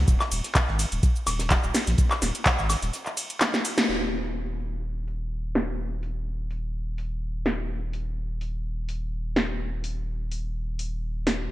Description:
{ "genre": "acid house", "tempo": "126 BPM", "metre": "4/4", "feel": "swing 54% on 16ths", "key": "unclear", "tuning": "A4 = 440 Hz", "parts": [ { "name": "saturated sub bass", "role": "bass", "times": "0.0-11.5 s", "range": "Eb1 to Bb1", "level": "-30 LUFS", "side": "equal", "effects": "sidechain pumping" }, { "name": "damped 70s drum kit", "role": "drums", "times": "0.1-3.9 s", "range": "hi-hat, snare drum", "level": "-38 LUFS", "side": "right 2 dB", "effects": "high-pass filter on hats, high-pass filter on snare, high-pass filter on room, gated reverb" }, { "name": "electro analog drum machine", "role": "drums", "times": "0.1-11.4 s", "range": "handclaps, hi-hat, ride cymbal, shaker, snare drum, woodblock", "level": "-26 LUFS", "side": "equal", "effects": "low-pass filter on hats, low-pass filter on snare, low-pass filter on perc, low-pass filter on cymbals, low-pass filter on room, gated reverb" }, { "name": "electronic kick drum", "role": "drums", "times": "0.1-2.6 s", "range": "none", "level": "-23 LUFS", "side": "equal", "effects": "none" } ], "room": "light reverb", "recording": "bright 1980s-style digital production", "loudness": "-25 LUFS", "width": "side -15 dB against mid", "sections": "0.0-3.9 A section; 3.9-11.5 B section", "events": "drop 0.0-3.9; break 2.9-3.9; drum fill 3.4-3.9; band accent 3.8", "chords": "none", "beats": "| 0.08 0.55 1.03 1.50 | 1.98 2.46 2.93 3.41 | 3.89 4.36 4.84 5.32 | 5.79 6.27 6.74 7.22 | 7.70 8.17 8.65 9.12 | 9.60 10.08 10.55 11.03" }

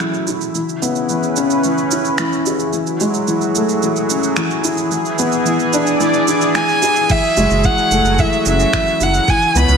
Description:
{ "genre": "piano and strings electronica", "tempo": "110 BPM", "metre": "4/4", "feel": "straight", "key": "unclear", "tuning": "A4 = 440 Hz", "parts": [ { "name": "lush unison pad", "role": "sustained chords", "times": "0.0-9.8 s", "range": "C#3 to D5", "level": "-21 LUFS", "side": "right 1 dB", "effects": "chorus, sidechain pumping" }, { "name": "felt-muted upright piano", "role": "riff", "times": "0.0-9.8 s", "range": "E3 to G#4", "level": "-18 LUFS", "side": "left 2 dB", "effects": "ping-pong delay" }, { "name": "minimal click drum kit", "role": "drums", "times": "0.0-9.8 s", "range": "crash cymbal, finger snaps, shaker", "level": "-23 LUFS", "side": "right 5 dB", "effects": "none" }, { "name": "rich violin", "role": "melody", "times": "6.6-9.8 s", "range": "E5 to B5", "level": "-15 LUFS", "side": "right 1 dB", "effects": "none" }, { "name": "electronic kick drum", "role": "drums", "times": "7.1-9.4 s", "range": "none", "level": "-18 LUFS", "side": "right 1 dB", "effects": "none" }, { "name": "round analog bass", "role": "bass", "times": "7.4-9.8 s", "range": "F#1 to C#2", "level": "-17 LUFS", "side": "right 1 dB", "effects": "sidechain pumping" } ], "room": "moderate recital hall reverb, RT60 1.5 s", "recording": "none", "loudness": "-13 LUFS", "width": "side -6 dB against mid", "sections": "0.0-7.1 A section; 7.1-9.8 B section", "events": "build-up 0.0-7.1; filter sweep on analog synth pad 0.0-7.1; drop 7.1-9.8", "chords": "0.0 F#m9; 0.6 C#m7; 2.7 F#m9; 4.9 E7; 7.1 F#m9", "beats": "0.01 | 0.55 1.10 1.64 2.19 | 2.73 3.28 3.83 4.37 | 4.92 5.46 6.01 6.55 | 7.10 7.64 8.19 8.73 | 9.28" }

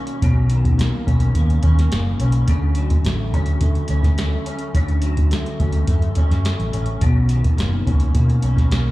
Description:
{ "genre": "indie pop, bedroom pop", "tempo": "106 BPM", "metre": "4/4", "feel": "straight", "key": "unclear", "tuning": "A4 = 440 Hz", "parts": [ { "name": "electric guitar through a small old amp", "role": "accompaniment", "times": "0.0-8.9 s", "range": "B2 to C#4", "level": "-25 LUFS", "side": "left 1 dB", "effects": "ensemble chorus, warbly pitch drift" }, { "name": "soft vintage rhythm box", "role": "drums", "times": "0.1-8.9 s", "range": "hi-hat, kick drum, snare drum", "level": "-20 LUFS", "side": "equal", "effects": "overdrive" }, { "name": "vintage muted fingered electric bass", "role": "bass", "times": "0.2-8.9 s", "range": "F#1 to D3", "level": "-18 LUFS", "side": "equal", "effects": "none" } ], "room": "digital ambience", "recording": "live gig heard through the venue's PA, club reverb", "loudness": "-16 LUFS", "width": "side -18 dB against mid", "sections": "0.0-8.9 A section", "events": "none", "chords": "0.0 Bmaj9; 2.5 Dmaj7; 7.0 Bmaj9", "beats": "| 0.21 0.78 1.35 1.91 | 2.48 3.05 3.61 4.18 | 4.75 5.31 5.88 6.45 | 7.01 7.58 8.15 8.72" }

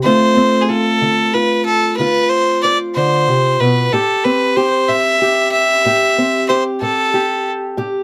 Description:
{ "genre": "acoustic country blues, solo or duo", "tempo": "62 BPM (dotted quarters)", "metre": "12/8", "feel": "straight", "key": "A minor", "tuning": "A4 = 440 Hz", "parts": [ { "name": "clear fiddle", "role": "melody", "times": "0.0-7.5 s", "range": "G#4 to E5", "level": "-17 LUFS", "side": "equal", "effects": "none" }, { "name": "fingerpicked steel-string acoustic guitar", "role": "accompaniment", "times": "0.0-8.0 s", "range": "A2 to C5", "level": "-19 LUFS", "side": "equal", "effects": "none" } ], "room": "light reverb", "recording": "close, detailed microphones", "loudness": "-15 LUFS", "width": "mono", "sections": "0.0-8.0 A section", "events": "none", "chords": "0.0 Dm7; 3.9 Am7", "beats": "| 0.05 1.01 1.98 2.95 | 3.92 4.88 5.85 6.81 | 7.78" }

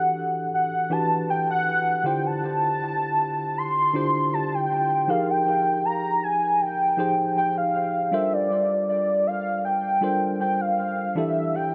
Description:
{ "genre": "R&B", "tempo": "79 BPM", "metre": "4/4", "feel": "swing 54% on 16ths", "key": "D minor", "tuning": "A4 = 440 Hz", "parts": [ { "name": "warm velvety synth lead", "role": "melody", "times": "0.0-11.7 s", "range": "D5 to C6", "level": "-25 LUFS", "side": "equal", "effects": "chorus, tape echo" }, { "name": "mellow tine electric piano", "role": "accompaniment", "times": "0.0-11.7 s", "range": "D3 to C5", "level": "-30 LUFS", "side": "equal", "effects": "tape echo" } ], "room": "light reverb", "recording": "echo-heavy mix", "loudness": "-24 LUFS", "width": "mono", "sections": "0.0-11.7 A section", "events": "none", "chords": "0.0 Em11; 2.0 Dm11; 5.1 Fm11; 8.1 Gm11; 11.2 Em11", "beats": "0.52 1.28 | 2.04 2.80 3.56 4.32 | 5.08 5.84 6.60 7.36 | 8.12 8.88 9.64 10.40 | 11.16" }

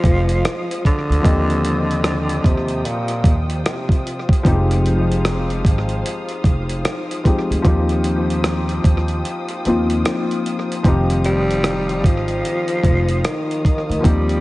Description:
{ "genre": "lo-fi hip hop", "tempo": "75 BPM", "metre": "4/4", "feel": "swing 61% on 16ths", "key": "F minor", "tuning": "A4 = 440 Hz", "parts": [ { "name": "growling tenor saxophone", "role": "melody", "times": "0.0-4.3, 11.3-14.4 s", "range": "Bb2 to G3", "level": "-22 LUFS", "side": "equal", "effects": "tape echo" }, { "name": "felt-muted upright piano", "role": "accompaniment", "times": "0.0-14.4 s", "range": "Eb3 to Eb5", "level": "-22 LUFS", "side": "left 2 dB", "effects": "cassette tape, tape echo" }, { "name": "muted studio string section", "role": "sustained chords", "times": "0.0-14.4 s", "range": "F4 to Eb6", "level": "-31 LUFS", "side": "left 1 dB", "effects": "none" }, { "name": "upright bass", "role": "bass", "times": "0.0-14.4 s", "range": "F1 to Eb2", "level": "-20 LUFS", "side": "equal", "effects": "none" }, { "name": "dusty soul sampler-style drum kit", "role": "drums", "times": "0.0-14.4 s", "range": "hi-hat, kick drum, rim click", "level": "-19 LUFS", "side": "equal", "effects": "none" } ], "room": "light reverb, small room ambience", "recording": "echo-heavy mix, nothing above 10.5 kHz", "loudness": "-16 LUFS", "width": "side -19 dB against mid", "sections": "0.0-14.4 A section", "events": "break 9.2-10.8", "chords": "0.0 Fm7; 1.2 Eb69; 4.4 Fm7; 7.6 Eb69; 10.8 F7(no3)", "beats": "0.45 | 1.25 2.04 2.85 3.65 | 4.45 5.25 6.04 6.84 | 7.64 8.45 9.24 10.04 | 10.85 11.64 12.45 13.24 | 14.04" }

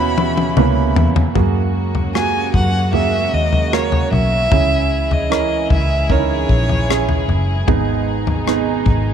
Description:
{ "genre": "pop ballad", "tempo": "76 BPM", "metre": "4/4", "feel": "straight", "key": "unclear", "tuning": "A4 = 440 Hz", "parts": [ { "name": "rich violin", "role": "melody", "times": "0.0-7.3 s", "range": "C#5 to B5", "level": "-21 LUFS", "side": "left 1 dB", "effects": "tape echo" }, { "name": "warm baby grand piano", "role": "accompaniment", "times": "0.0-9.1 s", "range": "G#2 to A#4", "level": "-20 LUFS", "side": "right 13 dB", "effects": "none" }, { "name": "dark studio string section", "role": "sustained chords", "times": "0.0-9.1 s", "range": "B2 to G#4", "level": "-25 LUFS", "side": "left 1 dB", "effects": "none" }, { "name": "vintage muted fingered electric bass", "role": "bass", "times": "0.0-9.1 s", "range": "F#1 to F#2", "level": "-19 LUFS", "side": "equal", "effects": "none" }, { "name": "natural country drum kit", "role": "drums", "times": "0.2-9.0 s", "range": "kick drum, rim click, toms", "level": "-20 LUFS", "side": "left 3 dB", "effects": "none" } ], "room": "moderate spring reverb, RT60 2.7 s", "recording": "1960s-style stereo", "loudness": "-14 LUFS", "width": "side -8 dB against mid", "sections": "0.0-1.4 A section; 1.4-9.1 B section", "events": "drum fill 0.0-1.4", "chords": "0.0 Em6; 1.4 F#add9; 4.5 C#m; 7.7 G#m", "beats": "0.57 | 1.36 2.15 2.94 3.73 | 4.51 5.30 6.09 6.88 | 7.67 8.46" }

